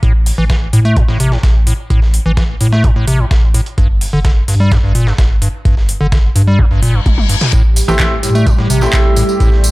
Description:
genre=acid house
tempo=128 BPM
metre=4/4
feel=straight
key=A minor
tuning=A4 = 440 Hz
part: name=acid bass, square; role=riff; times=0.0-9.5 s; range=G2 to A3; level=-16 LUFS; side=equal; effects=overdrive, vintage 12-bit sampler grit, tape echo
part: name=saturated sub bass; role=bass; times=0.0-9.7 s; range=G1 to A2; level=-15 LUFS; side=equal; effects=tube saturation, sidechain pumping
part: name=dusty soul sampler-style drum kit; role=drums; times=0.0-9.7 s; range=hi-hat, snare drum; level=-27 LUFS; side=right 1 dB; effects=overdrive, high-pass filter on hats, high-pass filter on snare
part: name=electronic kick drum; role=drums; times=0.0-9.5 s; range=none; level=-13 LUFS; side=equal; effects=overdrive
part: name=electro analog drum machine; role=drums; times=0.3-9.7 s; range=handclaps, hi-hat, toms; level=-20 LUFS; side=equal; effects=overdrive
part: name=reverse cymbal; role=sound effects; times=6.8-7.5 s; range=none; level=-20 LUFS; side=left 6 dB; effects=none
part: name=lush unison pad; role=sustained chords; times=7.5-9.7 s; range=G3 to G4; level=-19 LUFS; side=right 1 dB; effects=chorus, phaser, sidechain pumping
part: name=tambourine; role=percussion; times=7.5-9.7 s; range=none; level=-24 LUFS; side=right 3 dB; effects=none
part: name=bright grand piano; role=stabs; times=7.9-9.7 s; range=A3 to G4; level=-18 LUFS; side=right 1 dB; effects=tape echo
room=digital ambience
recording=none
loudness=-10 LUFS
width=side -20 dB against mid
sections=0.0-9.7 A section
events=reverse cymbal 6.8-7.5; drum fill 7.1-7.5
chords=0.0 N.C.; 7.5 Am7

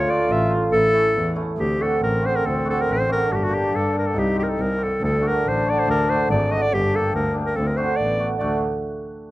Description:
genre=klezmer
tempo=141 BPM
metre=2/4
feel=straight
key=D phrygian dominant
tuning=A4 = 440 Hz
part: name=clear clarinet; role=melody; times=0.0-8.6 s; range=F#4 to E5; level=-22 LUFS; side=equal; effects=slapback echo
part: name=clear trombone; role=second line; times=0.0-8.6 s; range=A3 to F4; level=-26 LUFS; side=left 2 dB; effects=none
part: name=cimbalom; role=accompaniment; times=0.1-8.6 s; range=A3 to G4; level=-27 LUFS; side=right 3 dB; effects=slapback echo
part: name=clear double bass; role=bass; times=0.3-8.6 s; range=G1 to G2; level=-24 LUFS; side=equal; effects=none
room=little or no reverb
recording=recorded outdoors, with no room sound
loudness=-18 LUFS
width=side -16 dB against mid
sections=0.0-1.6 A section; 1.6-8.4 B section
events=none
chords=0.0 Dm; 0.7 A; 1.6 D; 3.3 Gm; 4.2 Cm; 5.0 D; 6.7 Gm; 7.6 D

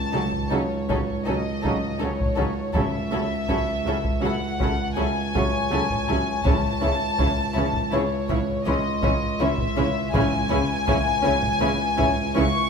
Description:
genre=cinematic, suspense film score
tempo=81 BPM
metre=5/4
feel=straight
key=unclear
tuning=A4 = 440 Hz
part: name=warm symphonic violin section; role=melody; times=0.0-12.7 s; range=C#5 to C#6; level=-27 LUFS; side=left 3 dB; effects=none
part: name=saturated sub bass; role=drone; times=0.0-12.7 s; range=C#2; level=-28 LUFS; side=right 2 dB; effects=none
part: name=timpani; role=percussion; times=0.0-11.2 s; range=C#3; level=-35 LUFS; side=left 3 dB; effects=none
part: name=warm symphonic violin section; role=second line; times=0.1-12.4 s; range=D#4 to C#5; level=-30 LUFS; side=left 3 dB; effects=none
part: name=rich chamber viola section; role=accompaniment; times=0.1-12.4 s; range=E3 to C#4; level=-29 LUFS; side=right 1 dB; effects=none
part: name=warm symphonic cello section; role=bass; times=0.1-12.5 s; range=C#3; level=-31 LUFS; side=right 2 dB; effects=none
part: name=warm symphonic double bass section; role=bass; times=0.1-12.5 s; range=C#2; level=-31 LUFS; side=right 2 dB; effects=none
part: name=taiko ensemble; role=drums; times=0.3-12.7 s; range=none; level=-29 LUFS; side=equal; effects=none
part: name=vibraphone with hard mallets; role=texture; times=5.4-12.7 s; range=C#5 to C#6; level=-34 LUFS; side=left 3 dB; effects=none
room=moderate scoring stage reverb, RT60 2.1 s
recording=minimal, uncompressed stereo recording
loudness=-21 LUFS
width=side -6 dB against mid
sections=0.0-12.7 A section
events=none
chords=0.0 D#m7b5/C#; 6.5 A/C#

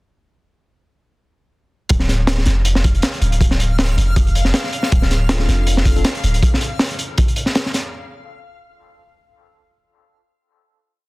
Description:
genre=drum and bass, jungle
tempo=159 BPM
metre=4/4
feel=swing 55% on 16ths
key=D minor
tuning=A4 = 437 Hz
part: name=long sustained 808-style bass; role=bass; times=1.9-6.4 s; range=D1 to F1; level=-17 LUFS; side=equal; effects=none
part: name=crunchy breakbeat drum kit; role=drums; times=1.9-7.8 s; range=hi-hat, kick drum, snare drum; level=-17 LUFS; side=equal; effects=none
part: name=backwards swelling texture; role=texture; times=2.8-6.4 s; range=F5 to F6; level=-31 LUFS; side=left 2 dB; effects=built-in reverb
part: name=mellow tine electric piano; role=stabs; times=5.3-6.1 s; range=C4 to A4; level=-29 LUFS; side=left 4 dB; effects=medium stereo tremolo, dub echo
room=small room reverb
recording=dense, heavily limited modern master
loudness=-14 LUFS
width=side -23 dB against mid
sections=1.9-7.9 drop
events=drop 1.9-7.9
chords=1.9 Dm7

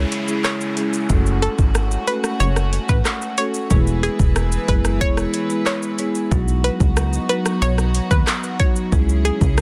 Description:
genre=dancehall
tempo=92 BPM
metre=4/4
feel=straight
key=unclear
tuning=A4 = 440 Hz
part: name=analog pluck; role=melody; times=0.0-9.4 s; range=G#4 to C#5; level=-27 LUFS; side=equal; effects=chorus, tape echo
part: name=warm studio string section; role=sustained chords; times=0.0-9.6 s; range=C#3 to B4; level=-32 LUFS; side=equal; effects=sidechain pumping
part: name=plucky analog bass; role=bass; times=0.0-9.6 s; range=E1 to D#2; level=-21 LUFS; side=equal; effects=none
part: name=downlifter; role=sound effects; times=0.0-3.7 s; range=none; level=-36 LUFS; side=equal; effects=none
part: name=afro-pop drum kit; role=drums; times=0.1-9.6 s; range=handclaps, hi-hat, kick drum, rim click, shaker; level=-22 LUFS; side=equal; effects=none
part: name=marimba with soft mallets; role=accompaniment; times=0.3-9.6 s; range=F#3 to A4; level=-26 LUFS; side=equal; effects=none
room=digital ambience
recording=dense, heavily limited modern master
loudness=-19 LUFS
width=mono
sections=0.0-9.6 A section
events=none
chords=0.0 C#m; 1.1 F#m; 3.7 E; 6.3 B; 8.9 C#m

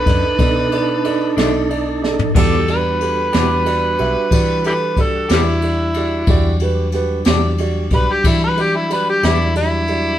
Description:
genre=slow blues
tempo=61 BPM (dotted quarters)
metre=12/8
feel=straight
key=E minor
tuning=A4 = 442 Hz
part: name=overdriven harmonica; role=melody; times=0.0-10.2 s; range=G3 to B4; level=-18 LUFS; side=equal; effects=none
part: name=mellow tonewheel organ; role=sustained chords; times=0.0-10.2 s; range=F#3 to A4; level=-25 LUFS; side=right 2 dB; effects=slow rotary speaker
part: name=vintage muted fingered electric bass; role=bass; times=0.0-10.2 s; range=B1 to E3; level=-20 LUFS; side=left 1 dB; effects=none
part: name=dark upright piano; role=accompaniment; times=0.1-10.1 s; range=D#4 to E5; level=-23 LUFS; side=right 5 dB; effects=none
part: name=jazz brush drum kit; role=drums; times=0.1-10.0 s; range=crash cymbal, kick drum, ride cymbal, snare drum, toms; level=-20 LUFS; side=equal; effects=none
part: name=electric guitar through a small old amp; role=accompaniment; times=1.4-9.4 s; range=B2 to G4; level=-22 LUFS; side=left 3 dB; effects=tremolo
room=light reverb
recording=band playing live in one room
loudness=-14 LUFS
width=side -11 dB against mid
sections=0.0-2.4 A section; 2.4-10.2 B section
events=harmonica solo 0.0-2.4; drum fill 2.0-2.4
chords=0.0 B7#9; 2.4 Em7

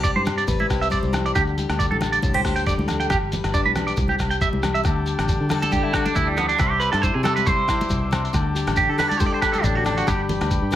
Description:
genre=highlife guitar band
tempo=138 BPM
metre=4/4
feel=swing 54% on 16ths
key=unclear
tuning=A4 = 440 Hz
part: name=picked plugged-in steel-string acoustic guitar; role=accompaniment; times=0.0-10.8 s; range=A2 to C5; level=-27 LUFS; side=left 5 dB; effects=none
part: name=electric guitar at the edge of break-up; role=arpeggios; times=0.0-10.2 s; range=G3 to G5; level=-23 LUFS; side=right 4 dB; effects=phaser, slapback echo
part: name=fingered electric bass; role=bass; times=0.0-10.8 s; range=G1 to D3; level=-26 LUFS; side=equal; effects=none
part: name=lo-fi sampler-style drum kit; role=drums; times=0.0-10.8 s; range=hi-hat, kick drum, rim click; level=-26 LUFS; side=equal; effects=none
part: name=shekere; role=percussion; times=0.0-10.8 s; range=none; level=-30 LUFS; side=equal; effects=none
part: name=congas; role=percussion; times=0.2-10.8 s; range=none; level=-30 LUFS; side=right 1 dB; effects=none
part: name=agogo bells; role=percussion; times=0.3-10.8 s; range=none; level=-33 LUFS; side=left 7 dB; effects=none
part: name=combo organ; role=sustained chords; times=4.8-10.8 s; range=E5 to D6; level=-31 LUFS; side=left 2 dB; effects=none
room=small room ambience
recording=none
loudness=-19 LUFS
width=side -12 dB against mid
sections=0.0-4.9 A section; 4.9-10.8 B section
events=clean electric guitar solo 4.9-10.8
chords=0.0 Cadd9; 1.4 Dsus4; 3.1 G; 4.0 C; 4.9 Dsus4; 6.6 Cadd9; 8.3 Dsus4; 10.1 G

